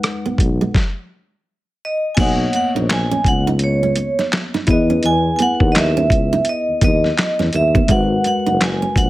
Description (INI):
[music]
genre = R&B, neo-soul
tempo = 84 BPM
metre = 4/4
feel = swing 59% on 16ths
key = unclear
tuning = A4 = 438 Hz
[part]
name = tine electric piano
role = accompaniment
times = 0.0-9.1 s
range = G#3 to F#5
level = -23 LUFS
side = left 3 dB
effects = none
[part]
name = dusty soul sampler-style drum kit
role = drums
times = 0.0-9.1 s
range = crash cymbal, handclaps, hi-hat, kick drum, rim click, snare drum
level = -18 LUFS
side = equal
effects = none
[part]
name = nylon-string guitar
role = second line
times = 0.3-9.0 s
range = G#3 to D#4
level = -23 LUFS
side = right 5 dB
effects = none
[part]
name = mellow tuba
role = bass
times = 0.3-9.1 s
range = F#1 to E2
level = -19 LUFS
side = equal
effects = none
[part]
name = vibraphone with medium hard mallets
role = melody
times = 1.9-9.1 s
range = C#5 to G#5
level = -19 LUFS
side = right 1 dB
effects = none
[sound]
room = light reverb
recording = none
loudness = -14 LUFS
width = side -16 dB against mid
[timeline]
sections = 0.0-2.2 A section; 2.2-9.1 B section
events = stop 0.7-2.2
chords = 0.0 G#m7; 0.7 N.C.; 2.2 Bmaj9; 4.7 Emaj7; 7.9 G#m9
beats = 0.03 0.74 1.46 | 2.17 2.89 3.60 4.32 | 5.03 5.74 6.46 7.17 | 7.89 8.60